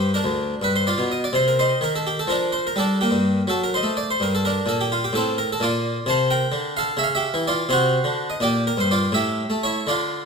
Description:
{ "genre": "classical, baroque-style suite movement for harpsichord", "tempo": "84 BPM (dotted quarters)", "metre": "6/8", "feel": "rubato", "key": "G minor", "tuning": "A4 = 439 Hz", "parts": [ { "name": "harpsichord", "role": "solo", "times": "0.0-10.3 s", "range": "D2 to A5", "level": "-19 LUFS", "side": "equal", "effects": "none" } ], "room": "moderate recital hall reverb, RT60 1.3 s", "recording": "close, detailed microphones", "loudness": "-19 LUFS", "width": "side -5 dB against mid", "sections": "0.0-10.3 A section", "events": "none", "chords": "0.0 Gm; 0.6 G7; 1.3 Cm; 2.8 Gm; 3.5 F#dim7; 4.2 Gm; 5.6 Bb; 7.0 C#dim; 7.7 D7/C; 8.4 Gm/Bb; 9.1 A5", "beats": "0.60 | 1.32 2.04 | 2.77 3.48 | 4.19 4.89 | 5.60 6.29 | 6.99 7.70 | 8.40 9.12 | 9.87" }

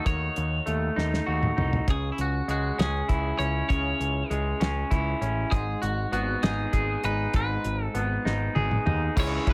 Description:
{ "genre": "indie rock", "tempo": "66 BPM (dotted quarters)", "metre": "6/8", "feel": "straight", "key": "unclear", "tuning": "A4 = 439 Hz", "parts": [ { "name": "twangy electric guitar", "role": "melody", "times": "0.0-9.5 s", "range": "E4 to C#5", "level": "-35 LUFS", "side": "equal", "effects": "digital delay" }, { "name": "electric guitar through a small old amp", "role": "riff", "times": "0.0-9.5 s", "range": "G#2 to G#4", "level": "-32 LUFS", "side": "equal", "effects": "none" }, { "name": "growling picked electric bass", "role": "bass", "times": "0.1-9.5 s", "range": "G#1 to D#2", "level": "-31 LUFS", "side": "equal", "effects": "overdrive" }, { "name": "cloth-damped thuddy drum kit", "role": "drums", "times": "0.1-9.5 s", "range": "crash cymbal, hi-hat, kick drum, ride cymbal, snare drum, toms", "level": "-29 LUFS", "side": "equal", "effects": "none" }, { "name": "glockenspiel with rubber mallets", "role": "second line", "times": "9.2-9.5 s", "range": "B6 to C#7", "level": "-44 LUFS", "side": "equal", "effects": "none" }, { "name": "tambourine", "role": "percussion", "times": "9.2-9.3 s", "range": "none", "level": "-46 LUFS", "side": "equal", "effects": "none" } ], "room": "little or no reverb", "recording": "none", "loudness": "-27 LUFS", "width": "mono", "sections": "0.0-9.2 A section", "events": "drum fill 1.0-1.9, 8.3-9.2", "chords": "0.0 D#dim; 1.9 C#m; 5.5 G#m", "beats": "| 0.06 0.97 | 1.88 2.79 | 3.70 4.61 | 5.52 6.43 | 7.35 8.26 | 9.17" }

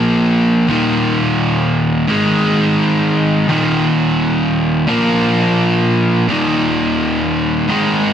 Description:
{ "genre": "rock", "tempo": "86 BPM", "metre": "4/4", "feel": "straight", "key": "unclear", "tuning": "A4 = 440 Hz", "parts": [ { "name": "overdriven electric guitar", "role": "solo", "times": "0.0-8.1 s", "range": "Eb2 to Bb3", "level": "-12 LUFS", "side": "equal", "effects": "digital delay" } ], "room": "light reverb", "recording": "dense, heavily limited modern master", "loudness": "-12 LUFS", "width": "side -9 dB against mid", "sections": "0.7-8.1 A section", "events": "none", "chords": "0.0 Bb5; 0.7 Eb5; 2.1 Ab5; 3.5 Eb5; 4.9 Bb5; 6.3 Eb5", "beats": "0.00 | 0.69 1.39 2.08 2.78 | 3.48 4.18 4.88 5.58 | 6.28 6.98 7.68" }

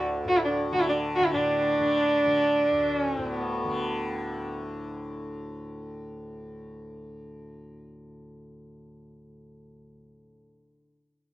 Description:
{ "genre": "indian classical", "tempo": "173 BPM", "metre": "7/4", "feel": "straight", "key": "unclear", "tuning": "A4 = 440 Hz", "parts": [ { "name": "dark sarangi", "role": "melody", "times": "0.0-4.5 s", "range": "D4 to F#4", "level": "-24 LUFS", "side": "right 1 dB", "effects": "none" }, { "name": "tanpura", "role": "drone", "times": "0.0-10.8 s", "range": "D2 to D3", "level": "-34 LUFS", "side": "left 1 dB", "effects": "none" } ], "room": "moderate studio reverb, RT60 0.5 s", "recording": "worn, warbling old tape, cassette tape, warbly pitch drift", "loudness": "-24 LUFS", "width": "side -16 dB against mid", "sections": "0.0-1.3 A section; 1.3-3.8 B section", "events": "none", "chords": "none", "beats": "0.30 0.65 1.00 | 1.34 1.69 2.04 2.38 2.73 3.07 3.42" }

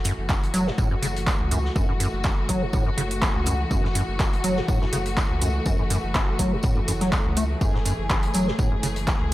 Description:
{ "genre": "acid house", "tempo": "123 BPM", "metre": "4/4", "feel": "swing 54% on 16ths", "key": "F# minor", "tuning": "A4 = 440 Hz", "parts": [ { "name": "rich studio string section", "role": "sustained chords", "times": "0.0-9.3 s", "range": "E3 to G#4", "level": "-30 LUFS", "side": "left 1 dB", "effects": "sidechain pumping" }, { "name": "acid bass, square", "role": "riff", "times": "0.0-8.9 s", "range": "F#2 to A3", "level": "-27 LUFS", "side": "equal", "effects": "overdrive, wide subtle chorus, sidechain pumping, dub echo" }, { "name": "round analog bass", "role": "bass", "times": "0.0-9.3 s", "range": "F#1 to C#2", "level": "-29 LUFS", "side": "equal", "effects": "tube saturation, sidechain pumping" }, { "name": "vintage drum kit", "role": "drums", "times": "0.0-9.2 s", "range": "hi-hat, snare drum, tambourine", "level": "-38 LUFS", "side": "left 1 dB", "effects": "sidechain pumping on hats, high-pass filter on hats, high-pass filter on snare, sidechain pumping on perc, high-pass filter on perc, high-pass filter on room" }, { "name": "electro analog drum machine", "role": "drums", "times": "0.1-9.2 s", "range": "handclaps, hi-hat", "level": "-29 LUFS", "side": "equal", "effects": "none" }, { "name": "electronic kick drum", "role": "drums", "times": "0.3-9.2 s", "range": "none", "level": "-24 LUFS", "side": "equal", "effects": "none" } ], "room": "light reverb, studio ambience", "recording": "none", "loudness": "-21 LUFS", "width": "side -16 dB against mid", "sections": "0.0-9.3 A section", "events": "filter sweep on acid bass 0.0-9.3", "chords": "0.0 F#m7", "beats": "0.29 0.78 1.27 | 1.76 2.25 2.73 3.22 | 3.71 4.20 4.68 5.17 | 5.66 6.15 6.64 7.12 | 7.61 8.10 8.59 9.07" }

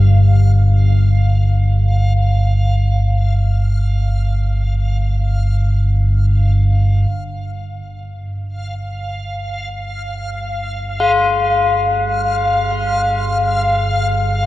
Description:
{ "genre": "dark ambient drone", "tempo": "free time", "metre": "none", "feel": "none", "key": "unclear", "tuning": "A4 = 441 Hz", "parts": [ { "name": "deep rumbling drone", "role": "drone", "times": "0.0-14.5 s", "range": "G1 to G2", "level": "-15 LUFS", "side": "equal", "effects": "built-in reverb" }, { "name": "backwards swelling texture", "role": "texture", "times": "0.0-14.5 s", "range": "F5", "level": "-26 LUFS", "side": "equal", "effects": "built-in reverb" }, { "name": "tubular bells", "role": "arpeggios", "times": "11.0-14.5 s", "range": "F4", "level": "-15 LUFS", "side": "left 2 dB", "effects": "tape echo" } ], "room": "wet cathedral reverb, RT60 6.2 s", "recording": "worn, warbling old tape, cassette tape, warbly pitch drift", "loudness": "-13 LUFS", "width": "side -16 dB against mid", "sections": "0.0-7.1 A section; 7.1-14.5 B section", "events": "fade-in on synth drone 7.1-14.5", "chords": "0.0 Fsus2/G", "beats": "free time" }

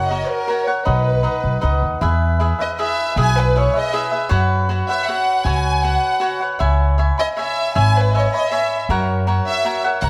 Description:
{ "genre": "mexican folk, mariachi", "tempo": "157 BPM", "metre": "3/4", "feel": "straight", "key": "unclear", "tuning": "A4 = 445 Hz", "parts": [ { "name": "warm symphonic violin section", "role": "melody", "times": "0.0-10.1 s", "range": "A#4 to G#5", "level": "-23 LUFS", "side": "equal", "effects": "none" }, { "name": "cavaquinho", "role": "accompaniment", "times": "0.0-10.1 s", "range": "D#4 to B5", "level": "-23 LUFS", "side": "equal", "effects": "none" }, { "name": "upright bass", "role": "bass", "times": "0.0-10.1 s", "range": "F#1 to F#2", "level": "-21 LUFS", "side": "equal", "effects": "none" } ], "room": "moderate concert hall reverb, RT60 2.3 s", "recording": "none", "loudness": "-18 LUFS", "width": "mono", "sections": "0.0-2.0 A section; 2.0-10.1 B section", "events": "none", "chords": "0.0 F#; 0.9 B; 2.0 E; 4.3 F#sus4; 6.6 C#m7; 8.9 F#", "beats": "0.09 0.47 | 0.85 1.24 1.62 | 2.01 2.40 2.78 | 3.17 3.55 3.93 | 4.31 4.69 5.07 | 5.45 5.83 6.22 | 6.60 6.99 7.37 | 7.76 8.14 8.52 | 8.89 9.27 9.65 | 10.03" }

